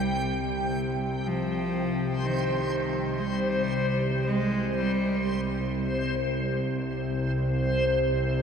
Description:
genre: dark ambient drone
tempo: free time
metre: none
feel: none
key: unclear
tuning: A4 = 441 Hz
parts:
  - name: rich cello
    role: melody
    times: 0.0-5.7 s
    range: Eb3 to Ab3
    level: -31 LUFS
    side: right 1 dB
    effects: diffuse ambient delay
  - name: sweeping resonant pad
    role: sustained chords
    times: 0.0-1.2 s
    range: none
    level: barely audible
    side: none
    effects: none
  - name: bowed-like drone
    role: drone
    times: 0.0-8.4 s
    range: C2 to C3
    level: -28 LUFS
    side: equal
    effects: built-in reverb
  - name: backwards swelling texture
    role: texture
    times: 0.0-8.4 s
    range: C5 to G5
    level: -30 LUFS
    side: left 1 dB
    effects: built-in reverb
room: wet huge ambient reverb, RT60 7.8 s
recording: none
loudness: -25 LUFS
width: side -6 dB against mid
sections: 0.0-1.2 A section; 1.2-8.4 B section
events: none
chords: 0.0 Gsus4/C; 1.2 N.C.

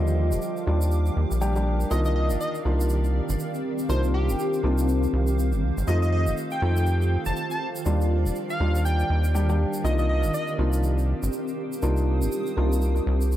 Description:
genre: deep house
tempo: 121 BPM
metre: 4/4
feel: swing 59% on 16ths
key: C dorian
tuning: A4 = 442 Hz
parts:
  - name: mellow hollow silver concert flute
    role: melody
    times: 0.0-0.7 s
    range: Eb5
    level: -37 LUFS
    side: left 1 dB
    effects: tape echo
  - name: hollow soft pad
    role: sustained chords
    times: 0.0-13.4 s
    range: Eb3 to Eb6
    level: -35 LUFS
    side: right 4 dB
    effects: ensemble chorus
  - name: felt-muted upright piano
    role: stabs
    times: 0.0-13.4 s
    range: D3 to G4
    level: -30 LUFS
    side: left 1 dB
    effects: tape echo
  - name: rubbery square bass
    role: bass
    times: 0.0-13.4 s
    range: Eb1 to F2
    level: -22 LUFS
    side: equal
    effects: none
  - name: granular cloud pad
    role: texture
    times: 0.0-13.4 s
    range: Eb3 to A5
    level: -32 LUFS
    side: equal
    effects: built-in reverb
  - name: egg shaker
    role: percussion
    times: 0.1-13.4 s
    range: none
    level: -41 LUFS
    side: right 3 dB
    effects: none
  - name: plucky unison lead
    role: melody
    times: 1.9-10.5 s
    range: G4 to A5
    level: -31 LUFS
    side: equal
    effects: tape echo
room: small room ambience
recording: dark, warm production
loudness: -22 LUFS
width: side -13 dB against mid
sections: 0.0-13.4 A section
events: none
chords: 0.0 Ebmaj9; 1.9 Cm11; 5.9 F7; 7.9 Ebmaj9; 9.8 Cm11

